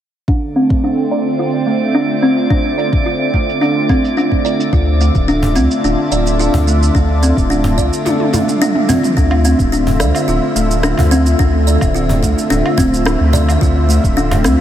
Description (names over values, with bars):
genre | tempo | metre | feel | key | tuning
organic downtempo | 108 BPM | 4/4 | straight | D minor | A4 = 440 Hz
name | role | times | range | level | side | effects
warm analog pad | sustained chords | 0.3-14.6 s | D3 to E5 | -18 LUFS | equal | chorus, sidechain pumping
kalimba | arpeggios | 0.3-14.6 s | A3 to D5 | -16 LUFS | right 1 dB | low-pass filter, analog delay
deep house drum kit | drums | 0.3-14.6 s | rim click, shaker, toms, woodblock | -22 LUFS | equal | overdrive, low-pass filter on perc, low-pass filter on toms, low-pass filter on snare
electronic kick drum | drums | 0.3-14.1 s | none | -16 LUFS | equal | none
drifting glass-harmonics texture | texture | 1.1-9.2 s | D5 | -25 LUFS | right 3 dB | chorus, built-in reverb
warm sub bass | bass | 4.7-14.6 s | D1 to D2 | -15 LUFS | equal | sidechain pumping
cajon | percussion | 5.4-14.6 s | none | -24 LUFS | right 1 dB | none
room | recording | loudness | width
moderate huge ambient reverb, RT60 7.4 s | dreamy mix soaked in reverb | -11 LUFS | side -11 dB against mid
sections
0.3-9.2 A section; 9.2-14.6 B section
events
filter sweep on drum 0.3-9.2; filter sweep on kalimba 0.3-9.2; kick drops out 8.1-9.2; drum fill 8.1-9.2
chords
0.3 Dm7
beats
| 0.28 0.84 1.39 1.95 | 2.50 3.06 3.61 4.17 | 4.73 5.28 5.84 6.39 | 6.95 7.50 8.06 8.61 | 9.17 9.73 10.28 10.84 | 11.39 11.95 12.50 13.06 | 13.61 14.17